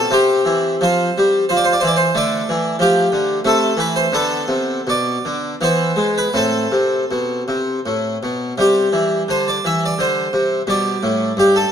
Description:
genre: classical, baroque-style suite movement for harpsichord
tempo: 77-93 BPM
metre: 3/4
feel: rubato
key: A minor, C major from 8.6 s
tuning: A4 = 441 Hz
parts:
  - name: harpsichord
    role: solo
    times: 0.0-11.7 s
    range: G2 to E5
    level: -15 LUFS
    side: equal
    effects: none
room: moderate concert hall reverb, RT60 2.4 s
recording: close, detailed microphones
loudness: -15 LUFS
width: side -8 dB against mid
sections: 0.0-8.6 A section; 8.6-11.7 A section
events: none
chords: 0.1 C; 2.1 Dm; 3.4 Am/C; 4.1 Bm7; 5.6 E; 6.3 Am; 8.6 C; 10.7 G

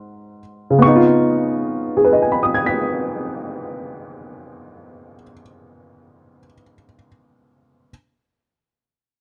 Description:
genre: solo jazz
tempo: 53 BPM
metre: 4/4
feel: swing 66% on 8ths, rubato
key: Db mixolydian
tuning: A4 = 440 Hz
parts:
  - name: warm upright piano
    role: solo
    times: 0.0-7.9 s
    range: Ab2 to Cb7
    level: -17 LUFS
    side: equal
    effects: none
room: small room reverb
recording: dry, close 1970s-style studio recording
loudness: -17 LUFS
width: mono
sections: 0.8-5.4 A section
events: none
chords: 0.0 Ab7; 0.8 Db9

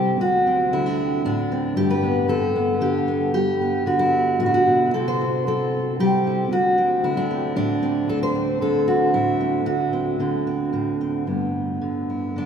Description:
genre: folk, solo fingerstyle acoustic guitar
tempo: 114 BPM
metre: 3/4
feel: straight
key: G major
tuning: A4 = 435 Hz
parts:
  - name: fingerpicked steel-string acoustic guitar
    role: solo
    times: 0.0-12.5 s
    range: D2 to C5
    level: -19 LUFS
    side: equal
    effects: none
room: wet cathedral reverb, RT60 5.5 s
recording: in a vast, echoing space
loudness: -19 LUFS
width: side -7 dB against mid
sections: 0.0-11.3 A section; 11.3-12.5 B section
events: none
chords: 0.2 D7; 1.8 Gmaj7; 4.9 C6; 6.5 D7; 11.3 G6

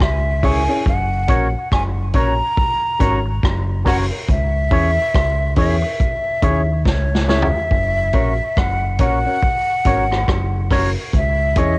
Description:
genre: roots reggae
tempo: 70 BPM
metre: 4/4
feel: swing 61% on 16ths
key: F# mixolydian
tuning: A4 = 439 Hz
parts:
  - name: breathy jazz flute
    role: melody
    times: 0.0-11.8 s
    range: C#5 to A#5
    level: -21 LUFS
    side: equal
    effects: cassette tape, tape echo
  - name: deep dub fingered electric bass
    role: bass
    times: 0.0-11.8 s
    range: F#1 to E2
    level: -19 LUFS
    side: equal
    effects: none
  - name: vintage drum kit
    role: drums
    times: 0.0-11.8 s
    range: hi-hat, kick drum, rim click, snare drum, toms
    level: -20 LUFS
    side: equal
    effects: cassette tape
  - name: electric guitar with an envelope filter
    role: accompaniment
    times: 0.4-11.8 s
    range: E4 to C#5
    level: -26 LUFS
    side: right 1 dB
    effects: cassette tape, tape echo
  - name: warm upright piano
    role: stabs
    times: 0.4-11.7 s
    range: C#4 to C#5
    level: -22 LUFS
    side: left 2 dB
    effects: cassette tape
room: little or no reverb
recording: home recording on cassette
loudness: -15 LUFS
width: side -24 dB against mid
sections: 0.0-7.7 A section; 7.7-11.8 B section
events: drum fill 6.9-7.7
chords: 0.0 C#m; 0.9 F#; 4.3 C#m; 7.7 F#; 11.1 C#m

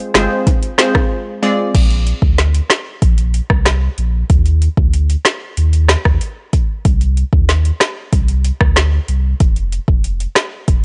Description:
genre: dancehall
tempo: 94 BPM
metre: 4/4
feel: straight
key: unclear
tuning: A4 = 440 Hz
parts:
  - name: glassy wavetable pluck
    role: accompaniment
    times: 0.1-1.6 s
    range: Ab3 to D5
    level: -19 LUFS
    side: equal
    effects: chorus, sidechain pumping
  - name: warm sub bass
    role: bass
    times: 0.1-10.8 s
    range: F1 to Eb2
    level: -17 LUFS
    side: equal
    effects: none
  - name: afro-pop drum kit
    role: drums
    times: 0.1-10.8 s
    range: crash cymbal, hi-hat, kick drum, rim click, snare drum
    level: -16 LUFS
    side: equal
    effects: none
  - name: bongos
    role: percussion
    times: 0.1-1.1 s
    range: none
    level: -28 LUFS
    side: equal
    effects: none
room: digital ambience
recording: dry, gritty hardware recording, nothing above 10.4 kHz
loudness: -15 LUFS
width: mono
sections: 0.0-1.7 A section; 1.7-10.8 B section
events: break 1.1-1.7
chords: 0.0 Fm; 1.7 Bb; 4.3 N.C.; 6.9 Cm; 9.4 N.C.

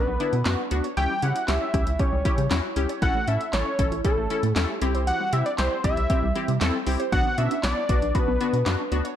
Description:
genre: synth-pop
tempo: 117 BPM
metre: 4/4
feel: straight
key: B minor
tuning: A4 = 440 Hz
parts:
  - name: fat analog lead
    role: melody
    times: 0.0-8.9 s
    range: A4 to G5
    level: -27 LUFS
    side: left 1 dB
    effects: ping-pong delay
  - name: funky polysynth comp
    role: accompaniment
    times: 0.0-9.1 s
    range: B3 to A4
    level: -29 LUFS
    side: left 3 dB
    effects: chorus
  - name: warbly dusty pluck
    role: arpeggios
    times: 0.0-9.1 s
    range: D3 to C#5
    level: -32 LUFS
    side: right 2 dB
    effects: chorus, phaser, ping-pong delay
  - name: rubbery square bass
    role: bass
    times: 0.1-9.0 s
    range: A1 to C#3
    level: -26 LUFS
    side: equal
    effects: none
  - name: punchy analog drum machine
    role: drums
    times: 0.2-9.2 s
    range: handclaps, hi-hat, kick drum, snare drum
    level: -27 LUFS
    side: equal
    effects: none
room: light reverb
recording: dark, warm production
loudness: -21 LUFS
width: side -10 dB against mid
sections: 0.0-9.2 A section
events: none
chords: 0.0 Bmadd9; 1.0 C#dim; 3.0 A; 4.8 C; 7.1 Bmadd9

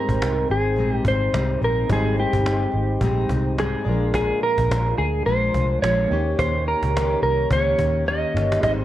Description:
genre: indie pop, bedroom pop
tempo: 107 BPM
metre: 4/4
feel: swing 55% on 16ths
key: Ab major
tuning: A4 = 442 Hz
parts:
  - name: mellow electric guitar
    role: melody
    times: 0.0-8.7 s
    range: G4 to Eb5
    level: -22 LUFS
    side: right 1 dB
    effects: analog chorus, plate reverb, tape echo
  - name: fingerpicked steel-string acoustic guitar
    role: accompaniment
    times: 0.0-8.8 s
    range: Ab2 to G4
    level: -27 LUFS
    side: left 4 dB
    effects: lush chorus, warbly pitch drift, plate reverb
  - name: soft electric-piano-like synth keys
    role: accompaniment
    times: 0.0-8.8 s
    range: Ab3 to G5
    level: -30 LUFS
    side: right 4 dB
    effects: chorus, phaser, cassette tape, plate reverb
  - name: vintage muted picked electric bass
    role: bass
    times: 0.1-8.8 s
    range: G1 to Eb2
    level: -23 LUFS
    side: equal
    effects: tube saturation
  - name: cajon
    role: drums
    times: 0.1-8.8 s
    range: none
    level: -29 LUFS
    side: equal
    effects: none
room: light reverb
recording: worn, warbling old tape, cassette tape, warbly pitch drift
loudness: -19 LUFS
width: side -13 dB against mid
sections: 0.0-8.8 A section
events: drum fill 8.1-8.6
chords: 0.0 Abmaj7; 3.9 Bb7; 6.1 Eb7

